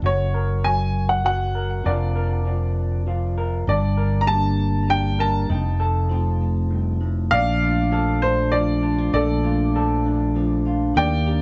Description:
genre	acoustic folk-pop ballad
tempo	99 BPM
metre	3/4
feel	straight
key	Bb major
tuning	A4 = 440 Hz
part	electric guitar through a small old amp	accompaniment	0.0-11.4 s	F2 to Bb4	-31 LUFS	equal	none
part	fretless electric bass	bass	0.0-11.4 s	F1 to Eb2	-24 LUFS	equal	none
part	clear upright piano	melody	0.1-11.4 s	A4 to Bb5	-26 LUFS	equal	plate reverb, tape echo
part	vibraphone with medium hard mallets	arpeggios	3.7-11.4 s	F3 to G4	-27 LUFS	equal	none
room	moderate small room reverb, RT60 0.5 s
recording	nothing above 7.8 kHz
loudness	-21 LUFS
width	mono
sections	0.0-7.3 A section; 7.3-11.4 B section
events	none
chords	0.0 Gb; 1.9 Bb/F; 3.7 Gm; 5.5 F7; 7.3 Bbmaj7

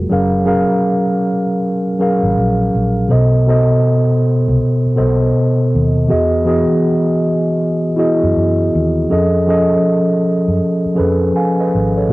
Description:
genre	lo-fi hip hop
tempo	80 BPM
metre	4/4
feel	swing 63% on 16ths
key	unclear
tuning	A4 = 444 Hz
part	mellow tine electric piano	accompaniment	0.0-12.1 s	A#2 to G#5	-13 LUFS	equal	medium stereo tremolo, cassette tape, low-pass filter
part	vintage muted fingered electric bass	bass	0.0-12.1 s	F#1 to F#2	-19 LUFS	equal	none
room	wet spring reverb, RT60 1.0 s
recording	home recording on cassette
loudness	-12 LUFS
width	side -20 dB against mid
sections	0.1-12.1 A section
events	none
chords	0.1 F#maj9; 3.1 B7b9; 6.1 Emaj9; 9.1 F7alt

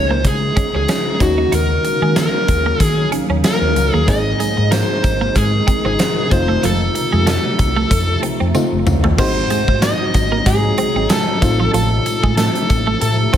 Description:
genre	1980s-style pop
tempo	94 BPM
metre	4/4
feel	swing 55% on 16ths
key	unclear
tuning	A4 = 442 Hz
part	dark smooth lead guitar	melody	0.0-13.4 s	Gb4 to Eb5	-19 LUFS	equal	overdrive
part	FM electric piano	accompaniment	0.0-13.4 s	Ab2 to Ab4	-23 LUFS	left 2 dB	chorus
part	granular cloud pad	sustained chords	0.0-13.4 s	C3 to Eb4	-25 LUFS	equal	built-in reverb
part	hollow-body short-scale fingered electric bass	bass	0.0-13.3 s	F1 to Eb3	-19 LUFS	equal	none
part	twelve-string electric guitar	riff	0.1-13.4 s	F3 to Eb4	-24 LUFS	right 6 dB	analog chorus, tape echo
part	huge arena drum kit	drums	0.2-13.4 s	crash cymbal, hi-hat, kick drum, snare drum, tambourine, toms	-19 LUFS	equal	gated reverb
part	tambourine	percussion	0.9-13.4 s	none	-36 LUFS	left 6 dB	none
part	glassy synth bell	second line	9.2-13.4 s	Ab5 to Eb6	-28 LUFS	right 2 dB	chorus, tape echo
room	light reverb, studio ambience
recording	none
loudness	-13 LUFS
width	side -10 dB against mid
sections	0.0-9.2 A section; 9.2-13.4 B section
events	drum fill 8.5-9.2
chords	0.0 Dbsus2; 1.2 Ebm7; 4.1 Ab; 6.3 F7; 9.2 Ab7; 11.4 F7/A

